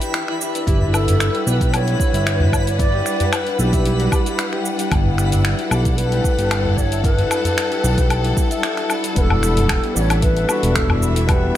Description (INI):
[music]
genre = organic downtempo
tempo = 113 BPM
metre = 4/4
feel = swing 53% on 16ths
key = unclear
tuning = A4 = 439 Hz
[part]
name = breathy low ney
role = melody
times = 0.0-11.6 s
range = G4 to D5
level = -24 LUFS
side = equal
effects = ping-pong delay
[part]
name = warm studio string section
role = sustained chords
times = 0.0-11.6 s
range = E3 to F#5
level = -26 LUFS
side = equal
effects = sidechain pumping
[part]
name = concert harp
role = arpeggios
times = 0.0-11.6 s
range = B3 to E5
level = -25 LUFS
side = left 4 dB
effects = digital delay
[part]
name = afro-pop drum kit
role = drums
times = 0.0-11.4 s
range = cabasa, finger snaps, hi-hat, woodblock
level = -24 LUFS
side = left 1 dB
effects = none
[part]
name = twinkling granular texture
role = texture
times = 0.0-9.2 s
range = B4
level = -32 LUFS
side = right 2 dB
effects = built-in reverb
[part]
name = smooth synth bass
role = bass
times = 0.7-11.5 s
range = E1 to B1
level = -19 LUFS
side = equal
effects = sidechain pumping
[part]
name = electronic kick drum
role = drums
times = 0.7-11.4 s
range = none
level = -19 LUFS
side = equal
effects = none
[part]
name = udu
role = percussion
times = 0.8-11.0 s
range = none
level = -22 LUFS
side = equal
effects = none
[part]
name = overdriven tine electric piano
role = accompaniment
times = 9.1-11.6 s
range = G3 to F#5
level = -26 LUFS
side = left 2 dB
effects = sidechain pumping
[sound]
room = light reverb, small room ambience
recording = none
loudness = -16 LUFS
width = side -12 dB against mid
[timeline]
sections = 0.0-9.2 A section; 9.2-11.6 B section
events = none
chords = 0.0 Em7; 0.7 Gmaj7; 9.2 Em7